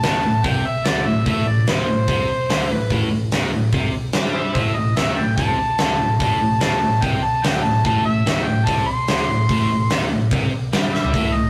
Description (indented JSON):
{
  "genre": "blues rock power trio and southern rock",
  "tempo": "146 BPM",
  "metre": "4/4",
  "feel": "straight",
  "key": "A minor",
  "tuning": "A4 = 440 Hz",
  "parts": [
    { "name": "overdriven harmonica", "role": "melody", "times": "0.0-11.5 s", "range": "G#4 to C6", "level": "-24 LUFS", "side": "equal", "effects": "none" },
    { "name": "distorted electric guitar", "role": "riff", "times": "0.0-11.5 s", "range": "A2 to G3", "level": "-23 LUFS", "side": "equal", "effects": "distortion" },
    { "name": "barky tine electric piano", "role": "bass", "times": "0.0-11.5 s", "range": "A1 to G2", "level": "-31 LUFS", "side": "equal", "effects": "none" },
    { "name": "huge arena drum kit", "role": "drums", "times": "0.0-11.2 s", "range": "hi-hat, kick drum, snare drum, toms", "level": "-24 LUFS", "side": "equal", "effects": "none" }
  ],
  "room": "moderate stone room reverb, RT60 0.9 s",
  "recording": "rough rehearsal-room recording, warm saturation",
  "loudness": "-19 LUFS",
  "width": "mono",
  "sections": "0.0-11.5 A section",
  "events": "drum fill 10.9",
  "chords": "0.0 Am"
}